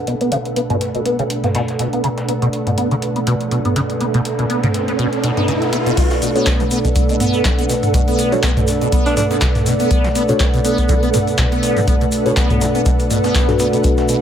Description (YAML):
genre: acid house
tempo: 122 BPM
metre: 4/4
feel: swing 56% on 16ths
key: unclear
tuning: A4 = 437 Hz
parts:
  - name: dark analog pad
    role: sustained chords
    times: 0.0-14.2 s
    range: B2 to E5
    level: -22 LUFS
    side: right 1 dB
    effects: chorus, vintage 12-bit sampler grit, sidechain pumping
  - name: ethereal airy pad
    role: texture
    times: 0.0-14.2 s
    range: D4 to F#5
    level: -22 LUFS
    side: right 2 dB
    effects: ensemble chorus, built-in reverb, tremolo, sidechain pumping
  - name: liquid acid bass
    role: riff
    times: 0.1-14.2 s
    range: B2 to B3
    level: -21 LUFS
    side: equal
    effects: phaser, tube saturation, ensemble chorus, ping-pong delay
  - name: booming analog drum machine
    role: drums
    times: 0.1-14.2 s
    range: crash cymbal, handclaps, hi-hat, toms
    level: -23 LUFS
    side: equal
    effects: overdrive
  - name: dusty soul sampler-style drum kit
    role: drums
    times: 0.1-14.2 s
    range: hi-hat, shaker, snare drum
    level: -33 LUFS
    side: equal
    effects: none
  - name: riser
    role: sound effects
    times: 3.1-6.0 s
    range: none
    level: -24 LUFS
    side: equal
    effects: none
  - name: electronic kick drum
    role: drums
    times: 6.0-14.0 s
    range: none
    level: -17 LUFS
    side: equal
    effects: overdrive
  - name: egg shaker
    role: percussion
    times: 6.0-14.2 s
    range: none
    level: -31 LUFS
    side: left 4 dB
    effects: none
  - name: mellow tine electric piano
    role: stabs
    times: 6.4-14.2 s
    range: D4 to C#5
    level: -20 LUFS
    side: left 3 dB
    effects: slow stereo tremolo, ping-pong delay
  - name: raspy alto saxophone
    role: melody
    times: 9.1-9.3 s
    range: D4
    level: -22 LUFS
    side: right 2 dB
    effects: digital delay
room: light reverb, digital ambience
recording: none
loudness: -14 LUFS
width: side -9 dB against mid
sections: 0.0-6.0 A section; 6.0-14.2 B section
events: filter sweep on acid bass 0.0-6.0; riser 3.1-6.0; drop 6.0-14.2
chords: 0.0 Bm7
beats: | 0.07 0.56 1.06 1.55 | 2.04 2.53 3.02 3.52 | 4.01 4.50 4.99 5.48 | 5.97 6.47 6.96 7.45 | 7.94 8.43 8.93 9.42 | 9.91 10.40 10.89 11.38 | 11.88 12.37 12.86 13.35 | 13.84